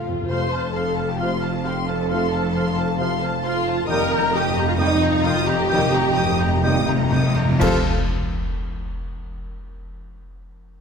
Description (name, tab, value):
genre	cinematic, heroic adventure film score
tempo	123-135 BPM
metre	4/4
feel	straight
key	F mixolydian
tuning	A4 = 439 Hz
part	warm symphonic violin section	melody	0.0-7.9 s	A5 to Eb6	-28 LUFS	left 4 dB	none
part	clear oboe	second line	0.0-7.8 s	F5 to G5	-32 LUFS	right 2 dB	none
part	dark clarinet	second line	0.0-7.8 s	F4 to Eb5	-34 LUFS	left 1 dB	none
part	mellow concert flute	second line	0.0-7.9 s	Eb5 to C6	-31 LUFS	left 3 dB	none
part	warm symphonic violin section	second line	0.0-7.9 s	A4 to Bb5	-34 LUFS	left 3 dB	none
part	warm symphonic viola section	accompaniment	0.0-7.9 s	C4 to C5	-25 LUFS	right 2 dB	none
part	bright trombone section	sustained chords	0.0-7.8 s	C3 to G3	-32 LUFS	right 4 dB	none
part	dark French horn section	sustained chords	0.0-7.8 s	A3 to F4	-32 LUFS	left 5 dB	none
part	concert harp	arpeggios	0.0-7.9 s	F3 to F6	-29 LUFS	left 12 dB	none
part	rich symphonic cello section	bass	0.0-7.9 s	F2	-28 LUFS	right 3 dB	none
part	timpani	percussion	0.0-0.3, 3.9-7.8 s	F2	-25 LUFS	left 1 dB	none
part	rich symphonic double bass section	bass	0.1-7.9 s	F1 to F2	-27 LUFS	right 4 dB	none
part	cymbal swell, clash cymbals and concert bass drum	percussion	3.9-8.5 s	none	-28 LUFS	equal	none
room	moderate scoring stage reverb, RT60 1.8 s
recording	none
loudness	-18 LUFS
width	side -6 dB against mid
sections	0.3-7.6 A section; 7.6-9.5 B section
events	timpani fill 0.0-0.3, 3.9-7.6; slowing down 3.0-7.6; band accent 7.6-8.1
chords	0.3 F; 3.9 Eb/F; 7.6 F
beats	| 0.31 0.76 1.21 1.66 | 2.10 2.55 2.99 3.44 | 3.89 4.34 4.79 5.25 | 5.71 6.17 6.64 7.12 | 7.60 8.08